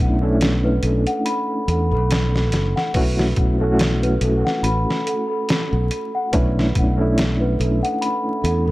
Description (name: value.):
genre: trip hop.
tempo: 71 BPM.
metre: 4/4.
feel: swing 56% on 16ths.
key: B minor.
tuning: A4 = 439 Hz.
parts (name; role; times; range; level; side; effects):
reed electric piano; accompaniment; 0.0-8.7 s; A3 to F#4; -23 LUFS; equal; fast tremolo, vintage 12-bit sampler grit, tape echo.
celesta; arpeggios; 0.0-8.7 s; A4 to B5; -24 LUFS; equal; tape echo.
modern bright fingered electric bass; bass; 0.0-8.7 s; F#1 to E2; -20 LUFS; equal; none.
trip hop sampler-style drum kit; drums; 0.4-8.7 s; hi-hat, kick drum, snare drum; -22 LUFS; equal; small room ambience.
room: light reverb, digital ambience.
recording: echo-heavy mix, vinyl crackle.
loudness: -17 LUFS.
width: side -18 dB against mid.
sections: 0.0-8.7 A section.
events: none.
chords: 0.0 Bm11; 3.0 F#m7/B; 6.3 Bm11.